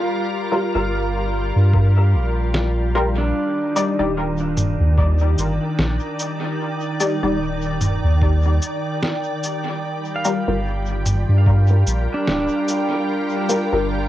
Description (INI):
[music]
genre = ambient dub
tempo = 74 BPM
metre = 4/4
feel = swing 57% on 16ths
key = G minor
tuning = A4 = 440 Hz
[part]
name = soft additive organ-like pad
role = sustained chords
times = 0.0-14.1 s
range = Eb3 to G5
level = -24 LUFS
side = equal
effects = ensemble chorus, built-in reverb, cassette tape
[part]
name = pedal steel guitar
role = arpeggios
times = 0.0-14.1 s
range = D4 to F5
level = -27 LUFS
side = right 2 dB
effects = cassette tape, dub echo
[part]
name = filtered dub chord stab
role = stabs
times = 0.5-13.9 s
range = G3 to D5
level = -25 LUFS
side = left 2 dB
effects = lush chorus, cassette tape, dub echo
[part]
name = soft dub sub bass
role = bass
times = 0.7-14.1 s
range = D1 to G2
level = -18 LUFS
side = equal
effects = none
[part]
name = electronic kick drum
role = drums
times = 1.7-11.7 s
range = none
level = -21 LUFS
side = equal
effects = cassette tape
[part]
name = lo-fi sampler-style drum kit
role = drums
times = 2.5-13.7 s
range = cabasa, snare drum, toms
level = -25 LUFS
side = equal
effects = cassette tape, dub echo
[sound]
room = light reverb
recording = home recording on cassette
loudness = -17 LUFS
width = side -13 dB against mid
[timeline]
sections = 0.0-14.1 A section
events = none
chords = 0.0 Gm7; 3.4 Ebmaj7; 9.8 Gm7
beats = | 0.11 0.93 1.74 2.55 | 3.36 4.17 4.98 5.79 | 6.60 7.41 8.22 9.03 | 9.84 10.65 11.46 12.28 | 13.09 13.90